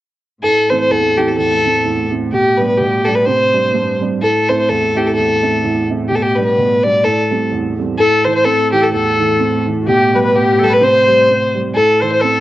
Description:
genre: celtic folk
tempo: 127 BPM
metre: 2/4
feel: swing 57% on 8ths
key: A minor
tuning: A4 = 436 Hz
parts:
  - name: dark fiddle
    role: melody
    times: 0.4-12.4 s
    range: G4 to D5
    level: -13 LUFS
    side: left 1 dB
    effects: cassette tape
  - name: dark upright piano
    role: accompaniment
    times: 0.4-12.4 s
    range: E2 to E4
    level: -19 LUFS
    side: right 5 dB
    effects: none
  - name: muted cello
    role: drone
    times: 0.4-12.4 s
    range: A2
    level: -22 LUFS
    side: left 1 dB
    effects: stereo widening
  - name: bright silver concert flute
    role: second line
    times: 8.0-12.4 s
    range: F#4 to C5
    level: -20 LUFS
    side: left 6 dB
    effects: none
room: moderate spring reverb, RT60 1.2 s, small room ambience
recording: home recording on cassette, nothing above 7.9 kHz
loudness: -12 LUFS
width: side -15 dB against mid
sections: 0.4-8.0 A section; 8.0-12.4 A section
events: none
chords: 0.4 Am; 2.3 G; 3.3 Csus2; 4.2 Am; 6.1 G; 7.0 Am7; 8.0 Am; 9.9 G; 10.8 C5; 11.7 Am

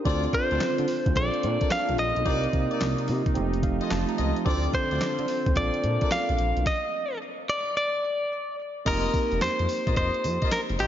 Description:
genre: R&B, new jack swing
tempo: 109 BPM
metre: 4/4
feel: swing 65% on 16ths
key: unclear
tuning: A4 = 438 Hz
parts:
  - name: bright tine electric piano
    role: accompaniment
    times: 0.0-10.9 s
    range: A3 to Bb5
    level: -31 LUFS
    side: right 4 dB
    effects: slapback echo
  - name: phased analog pad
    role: sustained chords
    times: 0.0-6.7 s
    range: C3 to F4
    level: -33 LUFS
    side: equal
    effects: phaser, chorus
  - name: warm horn section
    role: stabs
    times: 0.1-10.9 s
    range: Eb4 to Eb5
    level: -35 LUFS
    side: left 3 dB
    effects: slapback echo
  - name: smooth gliding synth bass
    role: bass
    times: 0.1-10.9 s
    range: F1 to D3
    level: -28 LUFS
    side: equal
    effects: none
  - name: crisp 8-bit digital drum machine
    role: drums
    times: 0.1-10.9 s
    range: crash cymbal, handclaps, hi-hat, kick drum, snare drum, tambourine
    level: -30 LUFS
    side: equal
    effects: overdrive
  - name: direct-recorded clean electric guitar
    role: melody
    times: 0.3-10.9 s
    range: G4 to F5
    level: -27 LUFS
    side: left 1 dB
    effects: tube saturation, slapback echo, tape echo
room: moderate concert hall reverb, RT60 2.1 s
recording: big arena sound, nothing above 7.5 kHz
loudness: -23 LUFS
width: side -10 dB against mid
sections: 0.1-8.9 A section; 8.9-10.9 B section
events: tine electric piano fill 3.4-4.5; stop 6.7-8.9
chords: 0.1 Dm7; 1.2 Bbmaj7; 2.3 Cm9; 3.4 F7; 4.5 Dm7; 5.6 Bbmaj7; 6.7 N.C.; 8.9 F7sus4

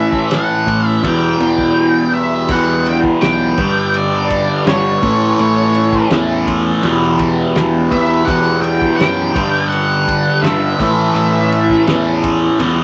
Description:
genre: psychedelic rock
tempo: 83 BPM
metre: 4/4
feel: straight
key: E dorian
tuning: A4 = 441 Hz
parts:
  - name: octave-fuzz lead guitar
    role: melody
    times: 0.0-11.8 s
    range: C#5 to G5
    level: -21 LUFS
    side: equal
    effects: wah, distortion
  - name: pedal harmonium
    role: sustained chords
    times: 0.0-12.8 s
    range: G3 to B4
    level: -25 LUFS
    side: equal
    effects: none
  - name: fuzz guitar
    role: riff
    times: 0.0-12.8 s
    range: E2 to A3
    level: -17 LUFS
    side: equal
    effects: distortion, phaser
  - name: fuzz picked electric bass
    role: bass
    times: 0.0-12.8 s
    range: B1 to A2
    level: -22 LUFS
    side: equal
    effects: overdrive
  - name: cloth-damped thuddy drum kit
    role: drums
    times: 0.1-12.8 s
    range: crash cymbal, kick drum, ride cymbal, snare drum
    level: -25 LUFS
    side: equal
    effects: none
room: wet small room reverb, RT60 0.5 s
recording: nothing above 8.0 kHz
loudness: -14 LUFS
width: mono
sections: 0.0-2.5 A section; 2.5-12.8 B section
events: none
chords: 0.0 Aadd9; 1.0 Em; 3.6 G; 5.0 Aadd9; 6.8 Em; 9.4 G; 10.8 Aadd9

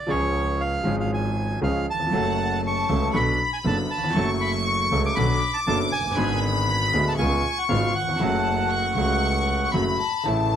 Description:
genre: tango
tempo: 118 BPM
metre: 4/4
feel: rubato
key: F# harmonic minor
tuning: A4 = 440 Hz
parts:
  - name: bandoneon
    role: melody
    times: 0.0-9.7 s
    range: C#5 to D6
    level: -26 LUFS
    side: right 2 dB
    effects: none
  - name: clear concert grand piano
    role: accompaniment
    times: 0.1-10.6 s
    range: D1 to A4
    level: -25 LUFS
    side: equal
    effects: none
  - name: warm double bass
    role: bass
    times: 0.1-10.6 s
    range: F#1 to D2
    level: -27 LUFS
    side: equal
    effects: none
  - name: warm studio violin section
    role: second line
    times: 2.1-10.6 s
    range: F#5 to D6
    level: -27 LUFS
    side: left 4 dB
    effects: none
room: moderate studio reverb, RT60 0.5 s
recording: none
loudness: -21 LUFS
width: side -9 dB against mid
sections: 0.0-10.3 A section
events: none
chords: 0.1 C#; 2.1 F#m; 3.1 Bm7; 4.2 F#m; 5.2 Bm7; 6.2 G#dim; 7.2 C#7; 8.2 F#m

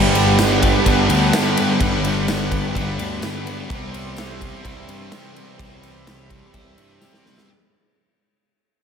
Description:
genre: rock, shoegaze and dream pop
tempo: 127 BPM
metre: 4/4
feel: straight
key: unclear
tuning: A4 = 443 Hz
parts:
  - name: sweeping resonant pad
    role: sustained chords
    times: 0.0-7.5 s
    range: G4 to C6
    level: -29 LUFS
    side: left 1 dB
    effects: chorus
  - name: twelve-string electric guitar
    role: arpeggios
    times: 0.0-7.5 s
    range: G3 to E4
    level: -29 LUFS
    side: left 3 dB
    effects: none
  - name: biting overdriven guitar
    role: riff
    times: 0.0-7.5 s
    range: G2 to G4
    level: -25 LUFS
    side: right 10 dB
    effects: reverse reverb
  - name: thick fuzz guitar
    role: riff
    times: 0.0-7.5 s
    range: G2 to C4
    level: -25 LUFS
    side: left 9 dB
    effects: distortion, lush chorus
  - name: tight distorted guitar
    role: riff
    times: 0.0-7.5 s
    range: G2 to C4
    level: -25 LUFS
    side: equal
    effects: distortion
  - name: fuzz picked electric bass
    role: bass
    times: 0.0-7.0 s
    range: G1 to G2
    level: -24 LUFS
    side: equal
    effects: overdrive
  - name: big rock drum kit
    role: drums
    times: 0.2-7.5 s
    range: kick drum, ride cymbal, snare drum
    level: -23 LUFS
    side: equal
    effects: none
  - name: tambourine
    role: percussion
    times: 0.4-7.1 s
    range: none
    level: -36 LUFS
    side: left 11 dB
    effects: none
room: moderate concert hall reverb, RT60 2.0 s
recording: none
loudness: -16 LUFS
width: side -7 dB against mid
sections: 0.0-7.5 A section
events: fade-out 0.0-7.5; drum fill 7.0-7.5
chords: 0.0 Gmaj7; 3.7 Cmaj7

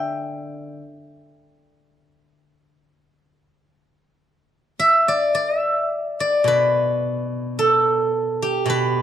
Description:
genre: chinese traditional, Chinese solo plucked strings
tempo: 54 BPM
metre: 4/4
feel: rubato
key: unclear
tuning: A4 = 441 Hz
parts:
  - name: steel-string zither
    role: solo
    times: 0.0-9.0 s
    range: B2 to G5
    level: -18 LUFS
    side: equal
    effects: none
room: little or no reverb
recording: dry, close 1970s-style studio recording, lossy compression artefacts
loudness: -18 LUFS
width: side -10 dB against mid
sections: 0.0-4.2 A section; 4.2-9.0 B section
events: none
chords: none

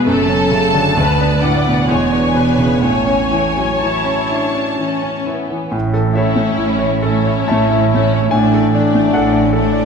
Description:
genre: classical, romantic movement for piano and orchestra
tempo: 60-75 BPM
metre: 3/4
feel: rubato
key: A major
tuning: A4 = 440 Hz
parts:
  - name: clear grand piano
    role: melody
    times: 0.0-9.8 s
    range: D2 to A5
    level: -16 LUFS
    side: equal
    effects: none
  - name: clear studio violin section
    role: second line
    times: 0.0-9.8 s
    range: G#3 to C#5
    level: -22 LUFS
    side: left 4 dB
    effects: none
  - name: rich studio viola section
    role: accompaniment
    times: 0.0-9.8 s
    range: A3 to D5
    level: -22 LUFS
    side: left 1 dB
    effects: none
  - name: rich studio violin section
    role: melody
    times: 0.1-9.8 s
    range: C#5 to A5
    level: -22 LUFS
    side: left 2 dB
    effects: none
  - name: clear studio double bass section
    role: bass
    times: 0.1-9.8 s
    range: E1 to D2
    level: -22 LUFS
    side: right 7 dB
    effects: none
  - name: rich studio cello section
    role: bass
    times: 0.1-9.8 s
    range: D2 to A2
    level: -22 LUFS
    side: right 4 dB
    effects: none
  - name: warm French horn section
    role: sustained chords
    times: 5.7-9.8 s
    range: A3 to D4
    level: -21 LUFS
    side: left 6 dB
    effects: none
room: moderate scoring stage reverb, RT60 2.1 s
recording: minimal, uncompressed stereo recording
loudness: -12 LUFS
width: side -6 dB against mid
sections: 0.0-5.7 A section; 5.7-9.8 B section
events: none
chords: 0.1 F#m; 1.0 Bm7/D; 1.9 E6; 2.8 A; 8.3 D/A

